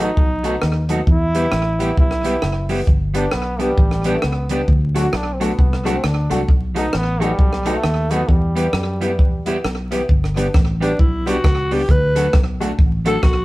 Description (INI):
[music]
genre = ska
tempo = 133 BPM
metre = 4/4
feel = swing 61% on 8ths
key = G major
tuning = A4 = 440 Hz
[part]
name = brilliant trombone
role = melody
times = 0.0-9.6 s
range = G3 to F#4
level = -24 LUFS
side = right 1 dB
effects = none
[part]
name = clean electric guitar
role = accompaniment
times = 0.0-13.2 s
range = F#3 to G4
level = -25 LUFS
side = right 2 dB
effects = none
[part]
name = tack piano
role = stabs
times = 0.0-13.2 s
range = A3 to B4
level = -24 LUFS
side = left 2 dB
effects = none
[part]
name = fingered electric bass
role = bass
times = 0.0-13.4 s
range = F#1 to F#2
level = -21 LUFS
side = equal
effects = none
[part]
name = compact cocktail drum kit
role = drums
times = 0.2-13.4 s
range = hi-hat, kick drum, rim click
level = -17 LUFS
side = equal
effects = none
[part]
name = raspy alto saxophone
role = melody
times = 10.8-13.4 s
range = D4 to B4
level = -20 LUFS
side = equal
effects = none
[sound]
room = moderate studio reverb, RT60 0.8 s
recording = band playing live in one room, vinyl crackle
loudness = -15 LUFS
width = side -19 dB against mid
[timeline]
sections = 0.0-10.1 A section; 10.1-13.4 B section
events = alto saxophone solo 10.1-13.4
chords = 0.0 B7; 1.1 Em; 2.9 G; 4.7 D; 6.5 B7; 8.3 Em; 10.1 G; 11.9 D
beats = 0.17 0.62 | 1.07 1.53 1.98 2.43 | 2.88 3.33 3.78 4.23 | 4.68 5.13 5.59 6.04 | 6.49 6.94 7.39 7.84 | 8.29 8.74 9.19 9.64 | 10.09 10.54 10.99 11.44 | 11.88 12.34 12.78 13.23